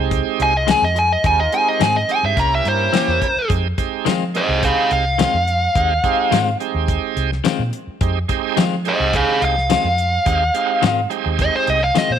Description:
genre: straight-eighth soul blues.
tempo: 106 BPM.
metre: 4/4.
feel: straight.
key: F minor.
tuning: A4 = 445 Hz.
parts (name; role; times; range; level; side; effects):
bright tonewheel organ; accompaniment; 0.0-11.8 s; Ab3 to G4; -23 LUFS; right 16 dB; slow rotary speaker, overdrive.
vintage muted fingered electric bass; bass; 0.0-12.2 s; C2 to F3; -22 LUFS; equal; none.
damped 70s drum kit; drums; 0.1-12.1 s; hi-hat, kick drum, snare drum, tambourine; -22 LUFS; left 3 dB; none.
dark smooth lead guitar; melody; 0.4-12.2 s; Ab4 to Bb5; -17 LUFS; equal; overdrive.
muted studio string section; sustained chords; 0.4-3.4 s; Db4 to Bb4; -31 LUFS; equal; none.
clean electric guitar; stabs; 0.7-12.1 s; Eb3 to Ab4; -23 LUFS; left 11 dB; none.
room: light reverb.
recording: 1960s-style stereo with parts hard left and right.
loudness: -15 LUFS.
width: side -9 dB against mid.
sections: 0.0-3.5 A section; 3.5-12.2 A section.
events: lead electric guitar solo 0.0-3.5, 3.5-12.2.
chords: 0.0 Fm7; 2.4 C7b9; 3.5 Fm7.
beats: 0.11 0.68 | 1.24 1.81 2.37 2.94 | 3.50 4.06 4.63 5.19 | 5.76 6.32 6.88 7.45 | 8.01 8.58 9.14 9.70 | 10.27 10.83 11.39 11.96.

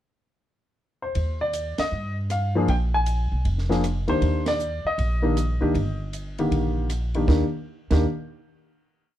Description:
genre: jazz piano trio.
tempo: 157 BPM.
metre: 4/4.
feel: swing 65% on 8ths.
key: Eb major.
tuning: A4 = 444 Hz.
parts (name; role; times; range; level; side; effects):
warm baby grand piano; melody; 1.0-8.0 s; D3 to Ab5; -24 LUFS; left 1 dB; none.
compact cocktail drum kit; drums; 1.1-8.0 s; crash cymbal, hi-hat, kick drum, ride cymbal, rim click, snare drum; -29 LUFS; right 2 dB; none.
upright bass; bass; 1.2-8.0 s; F1 to G2; -24 LUFS; equal; none.
room: light reverb.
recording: dark, warm production.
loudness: -22 LUFS.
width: side -12 dB against mid.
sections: 0.0-1.2 pickup bar; 1.2-7.3 A section; 7.3-8.8 final chord.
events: band accent 1.7, 4.4.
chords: 0.0 N.C.; 1.2 Ebmaj7; 2.7 Bb7(no3); 4.2 Ebmaj7; 7.3 N.C..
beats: 0.00 0.39 0.77 | 1.15 1.54 1.92 2.30 | 2.69 3.07 3.45 3.83 | 4.22 4.60 4.98 5.36 | 5.75 6.13 6.51 6.89 | 7.28 7.66.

